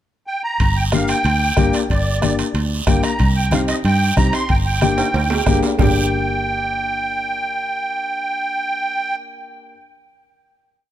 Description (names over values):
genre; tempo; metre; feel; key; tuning
latin, cumbia; 185 BPM; 4/4; straight; G minor; A4 = 440 Hz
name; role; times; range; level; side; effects
musette accordion; melody; 0.3-9.2 s; D5 to C6; -21 LUFS; right 2 dB; none
fingered electric bass; bass; 0.6-9.7 s; G1 to G2; -20 LUFS; right 1 dB; none
bombo; percussion; 0.6-5.9 s; none; -20 LUFS; equal; none
congas; percussion; 0.6-5.9 s; none; -25 LUFS; left 1 dB; none
guiro; percussion; 0.6-5.9 s; none; -29 LUFS; right 5 dB; none
timbales; percussion; 0.6-5.9 s; none; -28 LUFS; right 5 dB; none
dark upright piano; accompaniment; 0.9-9.8 s; Bb3 to G4; -23 LUFS; left 5 dB; none
room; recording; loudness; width
light reverb; none; -16 LUFS; side -12 dB against mid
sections
0.0-0.6 pickup bar; 0.6-5.8 A section; 5.8-8.4 final chord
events
drum fill 5.0-5.8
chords
0.0 N.C.; 0.6 Gm; 3.2 Cm; 4.5 Gm